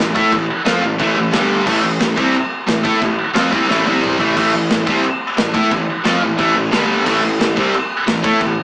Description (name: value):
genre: heavy metal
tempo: 178 BPM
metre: 4/4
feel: straight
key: A minor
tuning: A4 = 441 Hz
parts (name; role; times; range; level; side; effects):
- distorted electric guitar; riff; 0.0-8.5 s; G2 to A4; -19 LUFS; equal; overdrive
- heavy high-gain guitar; riff; 0.0-8.5 s; G2 to A4; -22 LUFS; left 1 dB; distortion
- high-gain distorted guitar; riff; 0.0-8.5 s; G2 to A4; -20 LUFS; right 1 dB; distortion
- fuzz picked electric bass; bass; 0.0-8.6 s; G1 to A2; -20 LUFS; equal; overdrive
- modern studio drum kit; drums; 0.0-8.5 s; china cymbal, crash cymbal, kick drum, snare drum, toms; -20 LUFS; equal; none
room: moderate small room reverb, RT60 0.5 s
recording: rough rehearsal-room recording, warm saturation, small speaker sound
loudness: -13 LUFS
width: side -23 dB against mid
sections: 0.0-8.6 A section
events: drum fill 3.7-4.4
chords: 0.0 Am; 1.3 G5; 1.7 Am; 3.9 C5; 4.2 Am; 6.7 G5; 7.1 Am